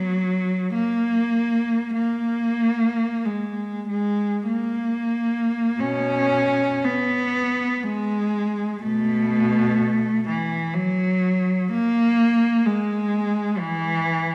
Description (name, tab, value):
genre	classical, free, expressive piece for unaccompanied cello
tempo	39-66 BPM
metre	3/4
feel	rubato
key	unclear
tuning	A4 = 440 Hz
part	rich cello	solo	0.0-14.3 s	B2 to C#4	-22 LUFS	equal	none
room	wet recital hall reverb, RT60 1.8 s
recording	recorded in a church or concert hall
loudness	-22 LUFS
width	mono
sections	0.0-5.8 A section; 5.8-14.3 B section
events	none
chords	none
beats	0.74 | 1.94 3.24 4.47 | 5.79 6.83 7.82 | 8.82 9.79 10.73 | 11.70 12.65 13.57